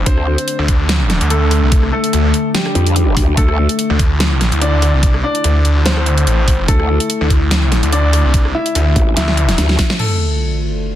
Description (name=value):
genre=heavy wobble dubstep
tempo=145 BPM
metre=4/4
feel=swing 54% on 16ths, half-time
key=D minor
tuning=A4 = 440 Hz
part: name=evolving wavetable pad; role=sustained chords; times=0.0-11.0 s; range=D2 to F4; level=-23 LUFS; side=left 3 dB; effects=phaser, built-in reverb, sidechain pumping
part: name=snarling distorted saw bass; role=bass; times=0.0-9.6 s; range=A1 to D2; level=-14 LUFS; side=equal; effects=distortion, overdrive
part: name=warm grand piano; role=melody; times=0.1-10.5 s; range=G3 to E5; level=-20 LUFS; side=left 2 dB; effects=digital delay
part: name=growl bass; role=bass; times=0.1-3.7, 6.7-9.8 s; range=A1 to F2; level=-14 LUFS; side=equal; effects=chorus, overdrive
part: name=dubstep drum kit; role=drums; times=0.1-10.1 s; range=crash cymbal, hi-hat, rim click, snare drum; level=-19 LUFS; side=right 1 dB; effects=none
part: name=electronic kick drum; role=drums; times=0.1-9.9 s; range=none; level=-14 LUFS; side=equal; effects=none
part: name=sub drop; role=sound effects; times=10.0-11.0 s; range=none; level=-18 LUFS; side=equal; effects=none
room=digital ambience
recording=dense, heavily limited modern master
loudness=-12 LUFS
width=side -12 dB against mid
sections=0.0-10.0 A section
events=drop 0.0-10.0; drum fill 9.2-10.0; band accent 9.9; impact 10.0-11.0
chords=0.0 D5; 10.0 Dm